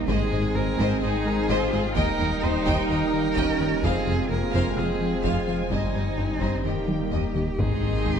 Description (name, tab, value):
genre	cinematic, hybrid orchestral and electronic film score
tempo	128 BPM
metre	4/4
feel	straight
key	F minor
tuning	A4 = 440 Hz
part	dark symphonic violin section	melody	0.0-7.4 s	G5 to Ab5	-39 LUFS	left 2 dB	none
part	rich cello	melody	0.0-8.2 s	Eb4 to C5	-31 LUFS	right 2 dB	tape echo
part	rich symphonic viola section	accompaniment	0.0-8.2 s	G3 to F4	-32 LUFS	right 2 dB	none
part	mellow trombone section	sustained chords	0.0-8.2 s	C3 to Ab3	-33 LUFS	right 4 dB	none
part	warbly tape-like pad	sustained chords	0.0-8.2 s	Eb3 to Eb5	-34 LUFS	left 1 dB	none
part	warm French horn section	sustained chords	0.0-8.2 s	Bb3 to F4	-32 LUFS	left 1 dB	none
part	saturated sub bass	bass	0.0-8.2 s	Eb1 to Ab1	-34 LUFS	equal	none
part	warm symphonic violin section	second line	0.1-8.2 s	C5 to C6	-32 LUFS	left 2 dB	none
part	rubbery square bass	riff	0.1-8.2 s	Eb2 to Ab3	-30 LUFS	left 3 dB	none
part	rich symphonic cello section	bass	0.1-8.2 s	Eb2 to Ab2	-32 LUFS	right 3 dB	none
part	rich symphonic double bass section	bass	0.1-8.2 s	F1 to Eb2	-33 LUFS	right 2 dB	none
part	taiko ensemble	drums	0.1-8.2 s	none	-33 LUFS	equal	none
part	clear concert grand piano	texture	1.3-7.6 s	G4 to Bb6	-41 LUFS	left 3 dB	none
part	sub drop	sound effects	7.7-8.2 s	none	-32 LUFS	equal	none
room	wet scoring stage reverb, RT60 1.8 s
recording	none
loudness	-22 LUFS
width	side -7 dB against mid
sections	0.0-7.6 A section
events	drum fill 6.9-7.6; impact 7.6-8.2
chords	0.1 Ab; 2.0 Eb; 3.8 Fm; 5.7 Cm/G; 6.6 Eb; 7.6 Ab